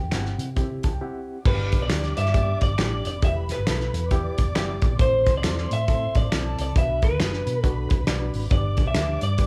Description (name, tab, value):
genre	uptempo 1960s-style soul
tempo	136 BPM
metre	4/4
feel	swing 61% on 8ths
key	G major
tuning	A4 = 442 Hz
part	electric guitar through a small old amp	melody	0.0-9.5 s	G4 to E5	-30 LUFS	equal	none
part	barky reed electric piano	accompaniment	0.0-9.5 s	Bb3 to B5	-36 LUFS	equal	overdrive, fast tremolo
part	hollow-body short-scale fingered electric bass	bass	0.0-9.5 s	E1 to C3	-29 LUFS	equal	none
part	warm soul drum kit	drums	0.1-9.5 s	crash cymbal, hi-hat, kick drum, snare drum	-26 LUFS	equal	none
part	finger snaps	percussion	0.1-9.1 s	none	-39 LUFS	equal	none
part	muted studio string section	second line	1.4-9.5 s	A4 to D6	-38 LUFS	equal	none
room	light reverb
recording	band playing live in one room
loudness	-23 LUFS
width	mono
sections	0.0-1.4 A section; 1.4-9.5 B section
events	reed electric piano fill 0.6-1.4, 7.6-8.5; break 1.0-1.4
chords	0.0 C; 1.4 G; 3.2 Em; 5.0 Am; 6.7 Bm; 8.5 G